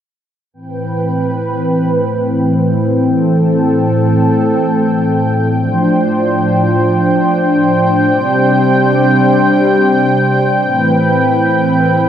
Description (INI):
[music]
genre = synthwave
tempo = free time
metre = none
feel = none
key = A minor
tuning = A4 = 439 Hz
[part]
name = lush unison pad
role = sustained chords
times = 0.5-12.1 s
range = A2 to G5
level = -10 LUFS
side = equal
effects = chorus
[sound]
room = moderate plate reverb, RT60 2.6 s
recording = none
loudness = -10 LUFS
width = side -9 dB against mid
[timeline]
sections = 0.5-12.1 A section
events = filter sweep on analog synth pad 0.5-12.1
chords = 0.5 Am7; 5.6 F6/A; 8.1 Csus2; 10.6 Am7